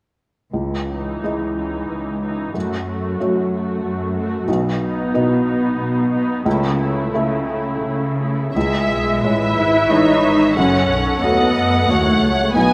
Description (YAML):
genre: cinematic, emotional film score for orchestra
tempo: 90 BPM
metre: 3/4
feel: rubato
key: C# minor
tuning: A4 = 439 Hz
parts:
  - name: felt-muted upright piano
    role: accompaniment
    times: 0.5-12.7 s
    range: B1 to E5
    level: -25 LUFS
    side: equal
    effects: none
  - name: muted symphonic cello section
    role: bass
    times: 0.5-12.7 s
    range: C#2 to E4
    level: -23 LUFS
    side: equal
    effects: none
  - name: muted symphonic viola section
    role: accompaniment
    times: 0.9-12.7 s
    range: E3 to E5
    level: -26 LUFS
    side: equal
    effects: none
  - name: muted symphonic double bass section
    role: bass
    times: 8.5-12.7 s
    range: F#1 to F#2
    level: -26 LUFS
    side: equal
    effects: none
  - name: muted symphonic violin section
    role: melody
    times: 8.6-12.7 s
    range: E5 to G#5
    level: -23 LUFS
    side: equal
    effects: none
room: moderate scoring stage reverb, RT60 1.9 s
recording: none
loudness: -19 LUFS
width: mono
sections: 0.5-8.6 A section; 8.6-12.7 B section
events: none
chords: 0.5 C#madd9; 2.5 F#m; 4.5 B; 6.5 A/C#; 8.6 C#madd9; 10.6 F#m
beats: | 0.54 1.23 1.89 | 2.55 3.20 3.84 | 4.48 5.13 5.78 | 6.45 7.13 7.83 | 8.55 9.23 9.90 | 10.56 11.23 11.90 | 12.55